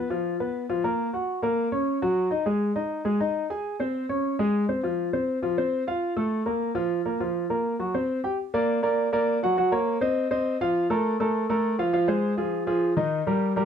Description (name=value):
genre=jazz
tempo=203 BPM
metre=4/4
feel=straight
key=unclear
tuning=A4 = 439 Hz
part: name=warm concert grand piano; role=solo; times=0.0-13.7 s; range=Eb3 to Ab5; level=-23 LUFS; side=equal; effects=none
room=moderate studio reverb, RT60 0.7 s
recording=dark, warm production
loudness=-23 LUFS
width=side -8 dB against mid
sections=0.0-8.4 A section; 8.4-13.7 B section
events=none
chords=0.1 N.C.; 0.7 Bb5; 1.3 Ebm7; 2.5 Ab5; 3.6 Db5; 4.8 F5; 6.0 Bb5; 7.8 C5; 8.4 F#aug; 9.6 Ebm7; 10.2 Cmadd11; 10.8 Bb5; 11.9 Fm; 12.5 Ebsus24; 13.1 Eb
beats=| 0.10 0.40 0.69 0.99 | 1.28 1.58 1.88 2.17 | 2.47 2.76 3.06 3.35 | 3.65 3.94 4.24 4.54 | 4.83 5.13 5.42 5.72 | 6.01 6.31 6.61 6.90 | 7.20 7.50 7.79 8.09 | 8.39 8.68 8.98 9.27 | 9.57 9.87 10.16 10.46 | 10.75 11.05 11.35 11.64 | 11.94 12.23 12.53 12.82 | 13.12 13.41